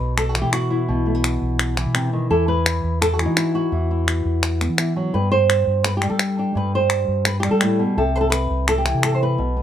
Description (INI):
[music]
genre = flamenco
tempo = 170 BPM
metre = 4/4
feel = straight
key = unclear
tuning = A4 = 441 Hz
[part]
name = flamenco guitar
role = melody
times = 0.0-9.6 s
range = G2 to C5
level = -20 LUFS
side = equal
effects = none
[part]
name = fingered electric bass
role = bass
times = 0.0-9.6 s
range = B1 to G3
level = -22 LUFS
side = equal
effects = none
[part]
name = palmas hand claps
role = percussion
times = 0.2-9.2 s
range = none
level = -22 LUFS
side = left 2 dB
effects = none
[sound]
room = light reverb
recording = none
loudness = -17 LUFS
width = side -10 dB against mid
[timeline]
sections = 0.0-9.6 A section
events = none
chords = 0.0 Bsus4; 2.3 Esus2; 5.1 G; 8.0 C